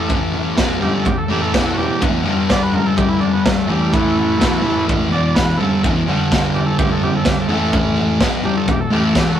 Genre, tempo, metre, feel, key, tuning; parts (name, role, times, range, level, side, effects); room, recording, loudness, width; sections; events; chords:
garage rock duo or trio; 126 BPM; 4/4; straight; E minor; A4 = 437 Hz
overdriven combo organ; melody; 0.0-9.4 s; E3 to D5; -23 LUFS; right 2 dB
fuzz guitar; riff; 0.0-9.4 s; E2 to B3; -17 LUFS; left 1 dB; distortion
raw garage drum kit; drums; 0.1-9.3 s; kick drum, snare drum, toms; -19 LUFS; equal
light reverb; rough rehearsal-room recording; -14 LUFS; side -10 dB against mid
0.0-9.4 A section
0.0 A5; 0.6 Em; 2.3 G5; 3.7 A5; 4.4 E5; 4.7 A5; 5.1 Em; 6.1 G5; 7.5 A5; 8.2 Em